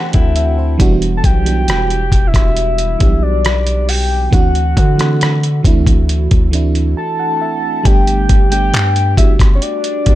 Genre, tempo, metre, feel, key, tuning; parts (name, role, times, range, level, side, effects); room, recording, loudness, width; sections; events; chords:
contemporary R&B; 68 BPM; 4/4; straight; G major; A4 = 440 Hz
FM electric piano with soft pad layer; accompaniment; 0.0-10.2 s; E3 to A5; -20 LUFS; right 5 dB; chorus, tremolo
fingerpicked steel-string acoustic guitar; arpeggios; 0.0-0.8 s; C4 to F#4; -22 LUFS; left 8 dB; tape echo
long sustained 808-style bass; bass; 0.1-10.2 s; E1 to D3; -15 LUFS; equal
dusty soul sampler-style drum kit; drums; 0.1-10.2 s; handclaps, hi-hat, kick drum, rim click; -13 LUFS; equal
soft octave-layered synth lead; melody; 1.2-10.2 s; C#5 to A5; -18 LUFS; left 2 dB; chorus, phaser
little or no reverb; dark, warm production; -11 LUFS; side -14 dB against mid
0.0-7.9 A section; 7.9-10.2 B section
FM electric piano fill 0.0-0.8, 6.5-7.9; break 7.0-7.9
0.0 D9; 0.8 Em7; 4.3 D9; 7.9 Gmaj9